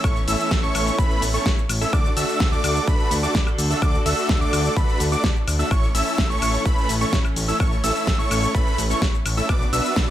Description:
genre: EDM, festival progressive house.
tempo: 127 BPM.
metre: 4/4.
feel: straight.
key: A major.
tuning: A4 = 441 Hz.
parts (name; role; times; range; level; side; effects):
warm studio string section; sustained chords; 0.0-10.1 s; D3 to A4; -31 LUFS; right 2 dB; sidechain pumping.
wide unison lead; arpeggios; 0.0-10.1 s; B5 to E6; -26 LUFS; equal; sidechain pumping, dub echo.
supersaw chords; riff; 0.0-10.1 s; A3 to E5; -26 LUFS; equal; sidechain pumping, dub echo.
fat analog bass; bass; 0.0-10.1 s; A1 to D2; -26 LUFS; equal; tube saturation, sidechain pumping.
big-room dance drum kit; drums; 0.0-10.1 s; cabasa, hi-hat, snare drum, woodblock; -26 LUFS; left 1 dB; none.
electronic kick drum; drums; 0.0-10.1 s; none; -21 LUFS; equal; none.
room: light reverb.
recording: none.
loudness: -18 LUFS.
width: side -12 dB against mid.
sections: 0.0-10.1 A section.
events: none.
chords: 0.0 A; 1.9 D; 5.7 A; 9.5 Bm.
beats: | 0.04 0.51 0.99 1.46 | 1.93 2.40 2.88 3.35 | 3.82 4.29 4.77 5.24 | 5.71 6.18 6.66 7.13 | 7.60 8.07 8.55 9.02 | 9.49 9.96.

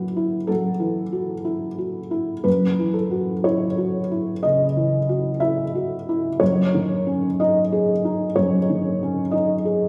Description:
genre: neoclassical minimalist piano.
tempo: 61 BPM.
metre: 4/4.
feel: rubato.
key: F# dorian.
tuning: A4 = 440 Hz.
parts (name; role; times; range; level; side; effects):
felt-muted upright piano; solo; 0.0-9.9 s; F#2 to E5; -22 LUFS; equal; none.
room: wet recital hall reverb, RT60 1.6 s.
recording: recorded in a church or concert hall.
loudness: -22 LUFS.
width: mono.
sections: 0.0-9.9 A section.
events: none.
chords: 0.0 B7sus4/F#; 2.5 F#5; 6.4 C#sus2/F#.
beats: 0.50 1.48 | 2.46 3.46 4.45 5.42 | 6.41 7.39 8.37 9.35.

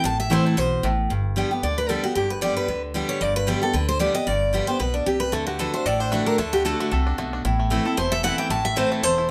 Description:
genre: bluegrass.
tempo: 227 BPM.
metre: 4/4.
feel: swing 55% on 8ths.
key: unclear.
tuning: A4 = 440 Hz.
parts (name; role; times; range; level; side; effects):
picked steel-string acoustic guitar; melody; 0.0-9.3 s; D4 to A5; -26 LUFS; equal; none.
picked steel-string acoustic guitar; accompaniment; 0.0-9.3 s; E2 to G4; -27 LUFS; equal; none.
upright bass; bass; 0.0-9.3 s; E1 to D2; -30 LUFS; equal; none.
bluegrass banjo; melody; 0.3-0.9, 5.3-9.3 s; E3 to A4; -32 LUFS; equal; none.
room: moderate studio ambience, RT60 0.5 s.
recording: none.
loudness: -23 LUFS.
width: mono.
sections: 0.0-1.1 A section; 1.1-9.3 A section.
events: none.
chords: 0.0 Am; 1.1 G; 5.3 D; 7.4 Am.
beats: | 0.04 0.31 0.57 0.84 | 1.10 1.37 1.63 1.89 | 2.16 2.42 2.69 2.95 | 3.22 3.48 3.75 4.01 | 4.27 4.54 4.80 5.07 | 5.33 5.60 5.86 6.13 | 6.39 6.66 6.92 7.18 | 7.45 7.71 7.98 8.24 | 8.51 8.77 9.04 9.30.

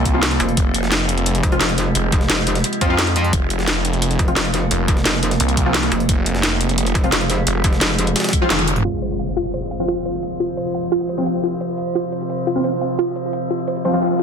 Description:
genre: dark technical drum and bass.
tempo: 174 BPM.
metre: 4/4.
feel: straight.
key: F minor.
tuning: A4 = 440 Hz.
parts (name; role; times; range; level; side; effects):
metallic inharmonic drone; sustained chords; 0.0-14.2 s; C3 to C5; -24 LUFS; right 1 dB; chorus, built-in reverb, sidechain pumping.
snarling distorted saw bass; bass; 0.0-8.8 s; F1 to C2; -21 LUFS; equal; overdrive.
orchestra-hit-like synth stab; stabs; 0.1-14.0 s; F3 to F4; -23 LUFS; left 1 dB; built-in reverb, dub echo.
drum and bass drum kit; drums; 0.1-14.2 s; crash cymbal, hi-hat, snare drum, toms; -20 LUFS; equal; none.
electronic kick drum; drums; 0.1-8.4 s; none; -19 LUFS; equal; overdrive.
jungle sampler-style drum kit; drums; 0.1-8.8 s; hi-hat, snare drum; -28 LUFS; right 1 dB; high-pass filter on hats, high-pass filter on snare.
metallic wobble bass; bass; 0.4-8.1 s; F1 to F2; -20 LUFS; equal; distortion, chorus.
soft round pluck; arpeggios; 8.8-14.2 s; F4 to F5; -23 LUFS; right 1 dB; chorus, sidechain pumping, dub echo.
impact; sound effects; 8.8-10.2 s; none; -30 LUFS; equal; none.
room: light reverb.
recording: dense, heavily limited modern master, low-pass filter.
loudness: -16 LUFS.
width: side -6 dB against mid.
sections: 0.0-8.8 A section; 8.8-14.2 B section.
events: drum fill 8.5-8.8; band accent 8.5; impact 8.8-10.2; filter sweep on synth pluck 8.8-14.2; filter sweep 8.8-14.2.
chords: 0.0 F5.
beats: 0.23 | 0.57 0.92 1.26 1.61 | 1.95 2.30 2.64 2.99 | 3.33 3.67 4.02 4.37 | 4.71 5.05 5.40 5.74 | 6.09 6.43 6.78 7.12 | 7.47 7.81 8.16 8.50 | 8.85 9.19 9.54 9.88 | 10.23 10.57 10.92 11.26 | 11.61 11.95 12.30 12.64 | 12.99 13.33 13.68 14.02.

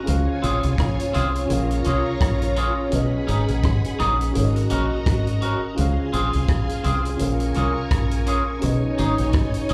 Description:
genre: lovers rock reggae.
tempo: 84 BPM.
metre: 4/4.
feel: swing 58% on 16ths.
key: unclear.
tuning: A4 = 440 Hz.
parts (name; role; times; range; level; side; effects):
string machine, violins; second line; 0.0-9.7 s; Eb4 to Db6; -32 LUFS; equal; ensemble chorus, slapback echo.
mellow tine electric piano; accompaniment; 0.0-9.7 s; Db4 to F5; -29 LUFS; equal; slapback echo.
deep dub fingered electric bass; bass; 0.1-9.7 s; Ab1 to Db2; -25 LUFS; equal; none.
vintage drum kit; drums; 0.1-9.7 s; hi-hat, kick drum, rim click; -28 LUFS; equal; none.
twangy electric guitar; stabs; 0.4-9.7 s; C4 to Bb4; -30 LUFS; equal; spring reverb, slapback echo.
room: studio reverb.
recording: live gig heard through the venue's PA, club reverb.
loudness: -22 LUFS.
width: mono.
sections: 0.0-9.7 A section.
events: none.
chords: 0.1 Bbm7; 2.9 Cb69; 4.3 Ab9sus4; 5.8 Bbm7; 8.6 Cb69.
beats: | 0.07 0.78 1.49 2.21 | 2.92 3.63 4.35 5.06 | 5.78 6.49 7.20 7.92 | 8.63 9.34.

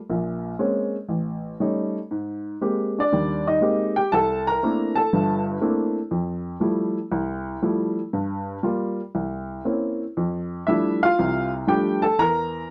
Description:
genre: solo jazz.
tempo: 119 BPM.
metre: 4/4.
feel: swing 68% on 8ths, rubato.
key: F major.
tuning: A4 = 440 Hz.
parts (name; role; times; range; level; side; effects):
warm upright piano; solo; 0.1-12.7 s; G1 to Bb5; -24 LUFS; equal; none.
room: light reverb.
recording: dark, warm production.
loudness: -24 LUFS.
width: mono.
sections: 0.0-10.2 A section; 10.2-12.7 B section.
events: none.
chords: 0.1 Bbm9; 1.1 A7#11; 2.1 Abmaj9; 4.1 C13; 6.1 Fmaj9; 8.1 Gm7; 9.1 C7b9; 10.2 F69; 12.2 E(b5, no3).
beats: | 0.07 0.58 1.08 1.60 | 2.11 2.62 3.12 3.63 | 4.13 4.63 5.13 5.63 | 6.12 6.62 7.12 7.62 | 8.12 8.62 9.13 9.65 | 10.17 10.68 11.19 11.69 | 12.20 12.70.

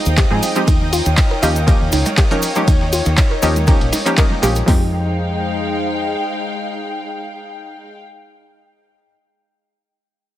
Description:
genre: deep house.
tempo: 120 BPM.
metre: 4/4.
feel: swing 54% on 16ths.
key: F minor.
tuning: A4 = 440 Hz.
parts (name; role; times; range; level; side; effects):
warbly tape-like pad; sustained chords; 0.0-7.8 s; Ab3 to G5; -26 LUFS; left 1 dB; chorus, built-in reverb, sidechain pumping.
filtered dub chord stab; stabs; 0.0-7.8 s; F3 to Bb4; -21 LUFS; equal; chorus, sidechain pumping, digital delay.
clear studio violin section; texture; 0.0-4.7 s; Eb5 to Eb6; -32 LUFS; left 1 dB; none.
dark studio string section; texture; 0.0-8.0 s; Ab3 to G5; -25 LUFS; equal; sidechain pumping.
fingered electric bass; bass; 0.1-6.1 s; Bb1 to Ab2; -19 LUFS; equal; sidechain pumping.
punchy analog drum machine; drums; 0.1-4.7 s; handclaps, hi-hat, ride cymbal; -22 LUFS; right 1 dB; none.
cabasa; percussion; 0.1-4.7 s; none; -28 LUFS; left 2 dB; none.
soft round pluck; arpeggios; 0.2-4.9 s; Eb4 to Eb5; -25 LUFS; equal; chorus, sidechain pumping, digital delay.
deep house drum kit; drums; 0.2-4.8 s; hi-hat, kick drum, snare drum; -14 LUFS; equal; overdrive.
electronic snare drum and shaker; drums; 0.2-4.7 s; none; -30 LUFS; equal; none.
congas; percussion; 0.3-4.5 s; none; -29 LUFS; right 3 dB; none.
room: light reverb, digital ambience.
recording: none.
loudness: -14 LUFS.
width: side -13 dB against mid.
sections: 0.0-4.7 A section; 4.7-8.7 B section.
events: drop 0.0-4.7.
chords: 0.0 Fm9; 0.7 Eb9; 4.7 Fm9.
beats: 0.18 | 0.68 1.18 1.68 2.18 | 2.68 3.18 3.68 4.18 | 4.68 5.18 5.68 6.18 | 6.68 7.18 7.68.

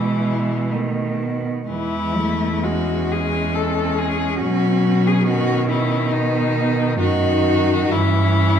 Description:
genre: classical, lyrical piece for cello ensemble.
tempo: 61-72 BPM.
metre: 3/4.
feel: rubato.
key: unclear.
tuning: A4 = 439 Hz.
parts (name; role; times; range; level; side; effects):
clear cello; melody; 0.0-8.6 s; D#4 to A4; -23 LUFS; left 6 dB; none.
clear cello; second line; 0.0-8.6 s; G#3 to D#4; -24 LUFS; right 4 dB; none.
clear cello; accompaniment; 0.0-8.6 s; D#3 to A3; -23 LUFS; left 2 dB; none.
clear cello; bass; 0.0-8.6 s; E2 to B2; -22 LUFS; right 2 dB; none.
room: wet recital hall reverb, RT60 1.5 s.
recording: dark, warm production.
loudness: -17 LUFS.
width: side -8 dB against mid.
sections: 0.0-8.6 A section.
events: none.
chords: 0.0 E/B; 0.7 B; 1.7 E; 4.4 B; 7.0 D#m/F#; 7.9 C#dim/G.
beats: 0.71 | 1.69 2.63 3.56 | 4.41 5.28 6.13 | 6.99 7.91.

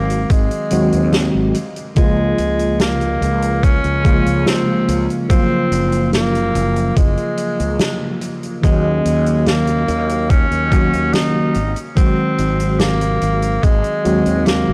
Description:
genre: vaporwave.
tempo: 72 BPM.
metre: 4/4.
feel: straight.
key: Gb lydian.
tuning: A4 = 440 Hz.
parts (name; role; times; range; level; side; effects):
warm tenor saxophone; melody; 0.0-14.7 s; Ab3 to Eb4; -23 LUFS; equal; tape echo.
mellow tine electric piano; accompaniment; 0.0-14.7 s; Db3 to Gb4; -21 LUFS; equal; analog chorus.
fretless electric bass; bass; 0.0-14.7 s; Gb1 to Eb2; -23 LUFS; equal; lush chorus.
soft-mallet drum kit; drums; 0.1-14.6 s; hi-hat, snare drum; -26 LUFS; equal; none.
electronic kick drum; drums; 0.3-13.8 s; none; -16 LUFS; equal; none.
room: studio reverb.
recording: dry, gritty hardware recording, cassette tape.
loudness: -16 LUFS.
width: mono.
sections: 0.0-14.7 A section.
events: none.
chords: 0.0 Ab7; 1.6 Db6; 5.3 Gbmaj7; 8.6 Ebm7; 11.6 Ab7.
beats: 0.30 1.14 | 1.97 2.80 3.63 4.47 | 5.30 6.13 6.97 7.80 | 8.63 9.47 10.30 11.13 | 11.97 12.80 13.63 14.47.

